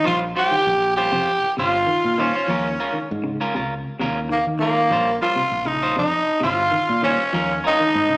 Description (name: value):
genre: afrobeat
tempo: 99 BPM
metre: 4/4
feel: straight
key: Bb dorian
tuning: A4 = 440 Hz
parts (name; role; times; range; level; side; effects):
- growling tenor saxophone; melody; 0.0-8.2 s; Bb3 to G4; -20 LUFS; equal; none
- raspy alto saxophone; second line; 0.0-8.2 s; Bb3 to G4; -25 LUFS; equal; none
- clean electric guitar; arpeggios; 0.0-8.2 s; C3 to F3; -30 LUFS; left 1 dB; none
- clean electric guitar; stabs; 0.0-7.8 s; G3 to C5; -26 LUFS; right 1 dB; warbly pitch drift
- fingered electric bass; bass; 0.0-8.2 s; G1 to Eb3; -28 LUFS; equal; none
room: light reverb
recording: live gig heard through the venue's PA, club reverb, small speaker sound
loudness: -18 LUFS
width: side -26 dB against mid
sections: 0.0-8.2 A section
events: none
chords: 0.1 Bbm69; 2.5 Eb9sus4; 4.9 Bbm69; 7.3 Eb9sus4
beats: | 0.05 0.66 1.27 1.88 | 2.49 3.09 3.70 4.31 | 4.92 5.53 6.13 6.74 | 7.35 7.95